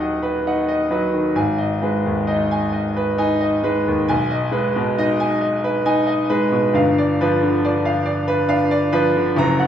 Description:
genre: classical, romantic nocturne for solo piano.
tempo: 67 BPM.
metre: 3/4.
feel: rubato.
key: unclear.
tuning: A4 = 440 Hz.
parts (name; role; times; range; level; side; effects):
clear concert grand piano; solo; 0.0-9.7 s; D#1 to A#5; -17 LUFS; equal; none.
room: wet recital hall reverb, RT60 1.5 s.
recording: heard from further back in the room.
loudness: -17 LUFS.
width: side -9 dB against mid.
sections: 0.0-9.7 A section.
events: none.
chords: 0.0 B/D#; 1.4 G#m; 4.1 G#m/B; 6.7 G7.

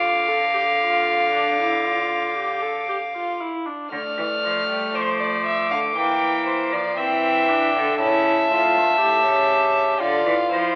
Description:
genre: classical, baroque-style fugue for string quartet.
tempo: 59 BPM.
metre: 4/4.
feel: straight.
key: D minor.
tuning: A4 = 440 Hz.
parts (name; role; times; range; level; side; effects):
rich violin; melody; 0.0-10.8 s; F5 to F6; -23 LUFS; left 1 dB; none.
warm violin; second line; 0.0-10.8 s; C5 to G5; -22 LUFS; equal; none.
warm viola; accompaniment; 0.0-10.8 s; A3 to A4; -26 LUFS; equal; none.
rich cello; bass; 0.0-10.8 s; G2 to G3; -25 LUFS; equal; none.
room: wet recital hall reverb, RT60 1.6 s.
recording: recorded in a church or concert hall, telephone sound.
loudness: -18 LUFS.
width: side -27 dB against mid.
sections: 0.0-3.9 A section; 3.9-10.8 B section.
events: none.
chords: 0.0 Dm; 6.0 Em7b5; 8.0 A7; 10.0 Dm.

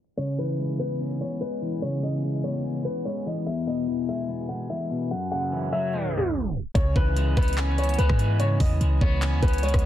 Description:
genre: hip hop, trap.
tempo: 146 BPM.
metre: 4/4.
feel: half-time.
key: C# minor.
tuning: A4 = 440 Hz.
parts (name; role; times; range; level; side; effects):
dark grand piano; melody; 0.2-9.8 s; B4 to F#5; -31 LUFS; left 1 dB; digital delay.
electric guitar at the edge of break-up; accompaniment; 0.2-9.9 s; E2 to C#4; -28 LUFS; left 1 dB; lush chorus.
clean 808-style bass; bass; 6.8-9.9 s; C#2 to G#2; -23 LUFS; equal; none.
trap drum kit; drums; 6.8-9.8 s; handclaps, hi-hat, kick drum, rim click; -24 LUFS; equal; none.
room: little or no reverb.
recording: dense, heavily limited modern master, vinyl crackle, low-pass filter, tape stop.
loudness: -23 LUFS.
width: side -12 dB against mid.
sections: 0.2-6.8 A section; 6.8-9.9 B section.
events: filter sweep 0.2-6.8; tape stop 5.9-6.8.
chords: 0.2 C#m7; 3.5 E; 5.1 F#m7; 6.8 C#m7.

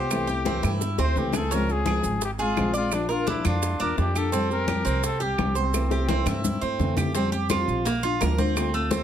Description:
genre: latin, Cuban son and guajira.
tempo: 170 BPM.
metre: 4/4.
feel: straight.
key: F major.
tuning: A4 = 444 Hz.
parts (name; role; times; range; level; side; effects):
breathy trumpet; melody; 0.0-6.8 s; C4 to C5; -30 LUFS; left 3 dB; tape echo.
nylon-string guitar; accompaniment; 0.0-9.0 s; C3 to G4; -29 LUFS; left 3 dB; none.
Cuban tres; arpeggios; 0.0-9.0 s; A3 to D5; -28 LUFS; right 5 dB; none.
upright bass; bass; 0.0-9.0 s; Ab1 to G2; -28 LUFS; right 1 dB; none.
bongos; percussion; 0.1-9.0 s; none; -35 LUFS; left 7 dB; none.
claves; percussion; 0.1-8.7 s; none; -36 LUFS; right 7 dB; none.
congas; percussion; 0.1-9.0 s; none; -32 LUFS; left 3 dB; none.
maracas; percussion; 0.1-9.0 s; none; -36 LUFS; right 6 dB; none.
room: light reverb.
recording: close, detailed microphones.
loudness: -22 LUFS.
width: side -9 dB against mid.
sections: 0.0-7.2 A section; 7.2-9.0 B section.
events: drum fill 0.8-1.5, 5.7-7.2.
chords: 0.1 C6; 1.5 Dbmaj7; 2.9 Bb; 4.3 Fsus2; 5.7 C6; 7.2 Fsus2; 7.9 Bb.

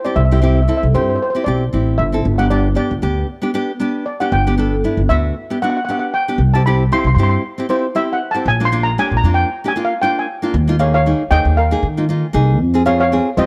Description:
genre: calypso.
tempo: 116 BPM.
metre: 4/4.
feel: swing 54% on 16ths.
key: G major.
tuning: A4 = 437 Hz.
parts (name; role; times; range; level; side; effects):
steel pan; melody; 0.0-13.5 s; Bb4 to C6; -21 LUFS; equal; none.
nylon-string guitar; accompaniment; 0.0-13.5 s; Bb3 to A4; -22 LUFS; equal; none.
upright bass; bass; 0.2-13.5 s; G1 to Eb3; -18 LUFS; equal; none.
room: light reverb.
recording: dark, warm production.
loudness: -16 LUFS.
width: mono.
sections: 0.0-10.5 A section; 10.5-13.5 B section.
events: steel pan solo 0.0-10.5.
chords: 0.0 C6; 2.3 G; 6.4 C; 8.5 Bb; 10.5 Ebsus2; 12.6 Fm.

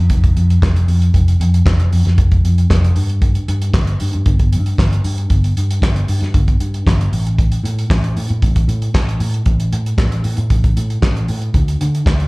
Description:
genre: disco.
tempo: 115 BPM.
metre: 4/4.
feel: straight.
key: unclear.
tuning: A4 = 440 Hz.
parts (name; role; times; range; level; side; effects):
fingered electric bass; bass; 0.0-12.3 s; F1 to D3; -14 LUFS; equal; none.
warm soul drum kit; drums; 0.1-12.3 s; handclaps, hi-hat, kick drum, snare drum; -16 LUFS; equal; none.
room: little or no reverb.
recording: live gig heard through the venue's PA, club ambience.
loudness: -13 LUFS.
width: side -27 dB against mid.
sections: 0.0-12.3 A section.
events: none.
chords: none.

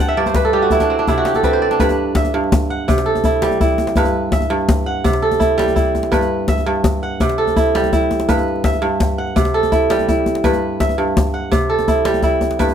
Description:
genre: west african traditional, West African string and xylophone music.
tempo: 111 BPM (dotted quarters).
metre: 12/8.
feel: straight.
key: G major.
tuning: A4 = 440 Hz.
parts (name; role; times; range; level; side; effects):
kora; arpeggios; 0.0-12.7 s; G2 to A5; -16 LUFS; right 2 dB; none.
djembe; percussion; 0.3-12.7 s; none; -19 LUFS; left 2 dB; none.
room: light reverb.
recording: close, detailed microphones.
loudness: -14 LUFS.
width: side -8 dB against mid.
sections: 0.0-1.8 A section; 1.8-12.7 B section.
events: kora fill 0.0-1.8.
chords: 0.0 N.C.; 1.8 G; 2.9 C; 4.0 G; 5.0 C; 6.1 G; 7.2 C; 8.3 G; 9.4 C; 10.4 G; 11.5 C.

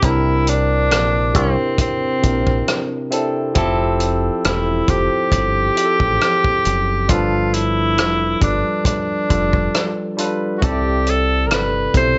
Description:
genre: R&B, neo-soul.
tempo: 68 BPM.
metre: 4/4.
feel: swing 54% on 16ths.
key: unclear.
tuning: A4 = 441 Hz.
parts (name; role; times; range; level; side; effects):
warm tenor saxophone; melody; 0.0-12.2 s; C4 to C5; -21 LUFS; equal; slapback echo.
barky tine electric piano; accompaniment; 0.0-12.2 s; C3 to D5; -23 LUFS; equal; phaser.
deep dub fingered electric bass; bass; 0.0-12.1 s; E1 to C2; -23 LUFS; equal; none.
warm soul drum kit; drums; 0.0-12.2 s; hi-hat, kick drum, rim click; -23 LUFS; equal; none.
room: light reverb.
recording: nothing above 7.9 kHz.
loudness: -18 LUFS.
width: mono.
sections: 0.0-12.2 A section.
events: none.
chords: 0.0 C7; 3.6 Fmaj7; 7.1 G7; 10.6 C6.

